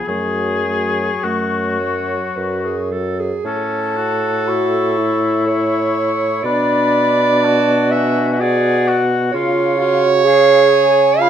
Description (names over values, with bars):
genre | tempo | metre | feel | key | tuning
classical, slow romantic movement for wind quintet | 52-66 BPM | 3/4 | rubato | unclear | A4 = 440 Hz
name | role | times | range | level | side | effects
warm oboe | second line | 0.0-11.3 s | C#4 to G#4 | -22 LUFS | left 4 dB | none
clear clarinet | accompaniment | 0.0-11.3 s | A3 to E#5 | -17 LUFS | right 6 dB | none
warm French horn | accompaniment | 0.0-11.3 s | F#3 to G#4 | -21 LUFS | left 1 dB | none
silver concert flute | melody | 0.1-11.3 s | E#5 to C#6 | -24 LUFS | left 9 dB | none
mellow bassoon | bass | 0.1-11.3 s | F#2 to C#3 | -21 LUFS | equal | none
room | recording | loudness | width
moderate large studio reverb, RT60 1.4 s | none | -14 LUFS | side -9 dB against mid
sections
0.0-3.5 A section; 3.5-11.3 A section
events
none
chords
0.1 F#m; 3.5 A; 6.4 Bm; 9.3 C#